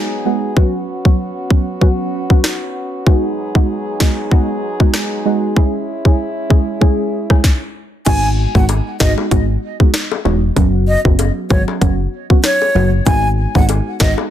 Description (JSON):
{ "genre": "dancehall", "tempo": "96 BPM", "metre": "4/4", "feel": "swing 56% on 16ths", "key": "G# minor", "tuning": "A4 = 440 Hz", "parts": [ { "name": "deep mellow chord stab", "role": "accompaniment", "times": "0.0-14.3 s", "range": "F#3 to G#4", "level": "-19 LUFS", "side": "right 2 dB", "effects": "chorus" }, { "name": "mellow French horn section", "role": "sustained chords", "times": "0.0-7.4 s", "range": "F#3 to G#4", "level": "-25 LUFS", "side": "equal", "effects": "sidechain pumping" }, { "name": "island pop drum kit", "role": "drums", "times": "0.6-14.2 s", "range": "crash cymbal, hi-hat, kick drum, rim click, snare drum", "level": "-13 LUFS", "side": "equal", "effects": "none" }, { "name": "breathy jazz flute", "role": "melody", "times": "8.1-14.1 s", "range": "C#5 to G#5", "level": "-19 LUFS", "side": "equal", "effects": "ping-pong delay" }, { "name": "plucky analog bass", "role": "bass", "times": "8.1-14.1 s", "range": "E1 to G#1", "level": "-16 LUFS", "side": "equal", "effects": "none" }, { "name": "bongos", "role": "percussion", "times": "8.7-14.3 s", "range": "none", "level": "-23 LUFS", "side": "left 10 dB", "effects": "none" } ], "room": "small room reverb", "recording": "dense, heavily limited modern master", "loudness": "-13 LUFS", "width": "side -11 dB against mid", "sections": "0.0-8.1 A section; 8.1-14.3 B section", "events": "stop 7.4-8.1", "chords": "0.0 G#m7; 0.6 F#sus4; 3.1 G#m7; 5.6 C#m; 8.1 G#m7; 10.6 F#sus4; 13.1 G#m7" }